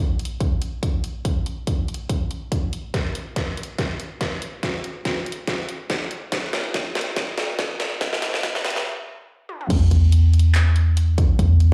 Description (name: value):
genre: future bass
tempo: 142 BPM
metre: 4/4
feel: swing 56% on 16ths, half-time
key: unclear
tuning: A4 = 439 Hz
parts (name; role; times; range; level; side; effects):
- dubstep drum kit; drums; 0.2-11.7 s; crash cymbal, handclaps, hi-hat, snare drum, toms; -29 LUFS; equal; high-pass filter on hats, high-pass filter on snare, high-pass filter on toms, high-pass filter on cymbals, high-pass filter on room
- electronic kick drum; drums; 0.4-11.5 s; none; -26 LUFS; equal; none
- warm 808-style bass; bass; 9.7-11.7 s; E2; -17 LUFS; equal; sidechain pumping
room: light reverb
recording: played on a big sound system in a bare room, large studio reverb, high-pass filter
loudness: -22 LUFS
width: mono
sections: 0.0-9.7 A section; 9.7-11.7 B section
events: build-up 0.0-9.7; filter sweep 0.0-9.7; drum fill 2.9-8.9, 9.5; stop 8.9-9.7; drop 9.7-11.7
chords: none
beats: 0.41 0.83 | 1.25 1.67 2.10 2.52 | 2.94 3.36 3.79 4.21 | 4.63 5.05 5.47 5.90 | 6.32 6.74 7.17 7.59 | 8.01 8.43 8.86 9.28 | 9.70 10.12 10.55 10.97 | 11.39